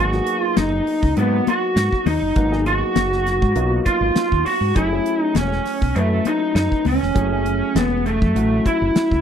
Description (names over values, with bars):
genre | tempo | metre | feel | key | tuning
electric jazz fusion | 100 BPM | 4/4 | swing 54% on 16ths | unclear | A4 = 439 Hz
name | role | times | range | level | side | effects
lead guitar through a small cranked amp | melody | 0.0-9.2 s | A3 to Gb4 | -20 LUFS | left 2 dB | overdrive, slapback echo
mellow trombone | second line | 0.0-9.2 s | A3 to Gb4 | -26 LUFS | right 12 dB | none
dark grand piano | accompaniment | 0.0-9.2 s | Gb3 to Cb5 | -27 LUFS | equal | none
woody fretless electric bass | bass | 0.0-9.2 s | Fb1 to Ab2 | -22 LUFS | equal | none
damped 70s drum kit | drums | 0.1-9.2 s | hi-hat, kick drum, snare drum | -23 LUFS | equal | none
congas | percussion | 0.6-9.1 s | none | -25 LUFS | left 15 dB | none
room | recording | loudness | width
little or no reverb | dry, close 1970s-style studio recording, lossy compression artefacts | -16 LUFS | side -8 dB against mid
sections
0.0-9.2 A section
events
none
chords
0.0 Abm9; 4.8 Gbm9